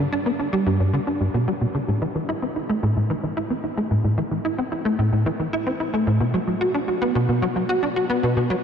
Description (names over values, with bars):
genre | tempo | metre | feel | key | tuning
ambient | 111 BPM | 4/4 | straight | A dorian | A4 = 440 Hz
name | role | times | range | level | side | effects
tight sequencer bass | solo | 0.0-8.6 s | G2 to F#4 | -20 LUFS | equal | ensemble chorus, ping-pong delay
room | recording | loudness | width
wet huge ambient reverb, RT60 7.7 s | dark, warm production | -20 LUFS | side -7 dB against mid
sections
0.0-1.9 A section; 1.9-8.6 B section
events
none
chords
none